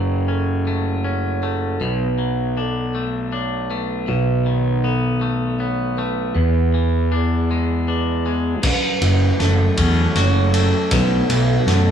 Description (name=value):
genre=post-rock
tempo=53 BPM (dotted quarters)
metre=6/8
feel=straight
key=F# minor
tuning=A4 = 442 Hz
part: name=twangy electric guitar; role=arpeggios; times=0.0-11.9 s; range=E2 to F#4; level=-25 LUFS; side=left 5 dB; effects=none
part: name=vibraphone with medium mallets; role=arpeggios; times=0.0-11.9 s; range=G#4 to C#5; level=-26 LUFS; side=right 6 dB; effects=none
part: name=fuzz picked electric bass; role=bass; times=0.0-11.9 s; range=F#1 to F#2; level=-19 LUFS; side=equal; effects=overdrive
part: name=evolving wavetable pad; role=sustained chords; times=9.3-11.9 s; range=F#3 to D4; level=-25 LUFS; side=right 1 dB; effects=chorus, built-in reverb
part: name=loose indie drum kit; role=drums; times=8.6-11.8 s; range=crash cymbal, kick drum, ride cymbal, snare drum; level=-22 LUFS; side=equal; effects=none
room=light reverb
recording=band playing live in one room, small room ambience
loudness=-17 LUFS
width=side -8 dB against mid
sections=0.0-8.6 A section; 8.6-11.9 B section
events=build-up 8.6-11.9; drum fill 8.6-11.9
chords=0.0 F#m; 1.8 Bm7; 4.1 B7; 6.4 E7; 8.6 F#m; 10.9 Bm7